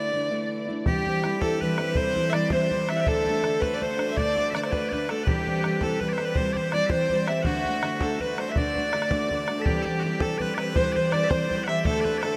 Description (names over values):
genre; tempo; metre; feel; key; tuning
celtic folk, Celtic jig; 109 BPM (dotted quarters); 6/8; straight; unclear; A4 = 440 Hz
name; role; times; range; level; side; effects
dark fiddle; melody; 0.0-12.4 s; F#4 to E5; -29 LUFS; equal; none
fingerpicked steel-string acoustic guitar; accompaniment; 0.0-12.4 s; C3 to G4; -31 LUFS; equal; none
loud bright bagpipes; second line; 0.9-12.4 s; F#4 to F#5; -34 LUFS; equal; none
bodhran; percussion; 0.9-12.3 s; none; -32 LUFS; equal; none
room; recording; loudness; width
wet huge ambient reverb, RT60 6.9 s; in a vast, echoing space; -25 LUFS; mono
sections
0.9-9.7 A section; 9.7-12.4 A section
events
none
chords
0.0 Dsus2; 0.9 C; 3.1 D; 5.3 C; 7.5 D; 9.7 C; 11.9 D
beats
0.31 | 0.86 1.41 | 1.96 2.51 | 3.06 3.61 | 4.16 4.71 | 5.26 5.81 | 6.36 6.91 | 7.46 8.01 | 8.56 9.11 | 9.65 10.20 | 10.75 11.30 | 11.85